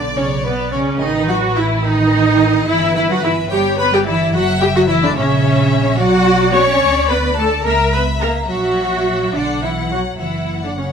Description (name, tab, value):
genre	quick classical-period movement for string orchestra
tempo	72 BPM (dotted quarters)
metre	6/8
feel	rubato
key	B minor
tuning	A4 = 440 Hz
part	clear studio violin section	melody	0.0-10.9 s	B4 to F#5	-25 LUFS	left 6 dB	none
part	rich chamber violin section	second line	0.0-10.9 s	B4 to C#6	-23 LUFS	left 3 dB	none
part	warm chamber cello section	bass	0.0-10.9 s	B2 to C#4	-21 LUFS	equal	none
part	warm symphonic double bass section	bass	0.0-10.9 s	F#1 to D2	-21 LUFS	right 2 dB	none
part	clear studio viola section	accompaniment	0.2-10.9 s	B3 to C#5	-16 LUFS	right 1 dB	none
room	moderate large studio reverb, RT60 1.0 s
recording	minimal, uncompressed stereo recording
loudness	-13 LUFS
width	side -7 dB against mid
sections	0.0-10.9 A section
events	none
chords	0.0 Bm; 1.0 B7/A; 2.7 Em/G; 3.5 C#m7b5/G; 4.3 F#7; 6.0 Bm; 7.6 F#7/C#; 9.3 Bm; 10.2 F#5